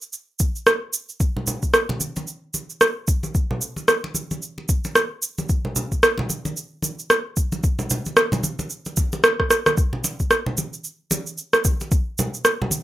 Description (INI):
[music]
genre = downtempo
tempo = 112 BPM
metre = 4/4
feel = swing 59% on 16ths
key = none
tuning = none
[part]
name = electronic shaker and rim click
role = drums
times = 0.0-12.8 s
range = none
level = -18 LUFS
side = right 1 dB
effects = none
[part]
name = electronic kick drum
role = drums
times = 0.4-12.0 s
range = none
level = -21 LUFS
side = left 1 dB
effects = none
[part]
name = congas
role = percussion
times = 1.4-12.8 s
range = none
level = -27 LUFS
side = equal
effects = none
[sound]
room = wet small room reverb, RT60 0.5 s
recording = rough home demo mix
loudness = -20 LUFS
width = side -14 dB against mid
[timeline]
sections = 0.0-9.8 A section; 9.8-12.8 B section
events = drum fill 9.4-9.8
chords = none